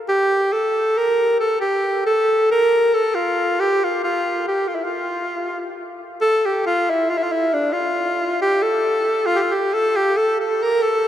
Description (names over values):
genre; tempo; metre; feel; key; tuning
balkan folk; free time; none; none; unclear; A4 = 439 Hz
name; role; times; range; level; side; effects
warm alto saxophone; solo; 0.1-11.1 s; D4 to Bb4; -17 LUFS; equal; none
room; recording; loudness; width
wet cathedral reverb, RT60 6.5 s; recorded in a church or concert hall; -17 LUFS; side -11 dB against mid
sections
0.0-6.2 A section; 6.2-11.1 B section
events
none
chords
none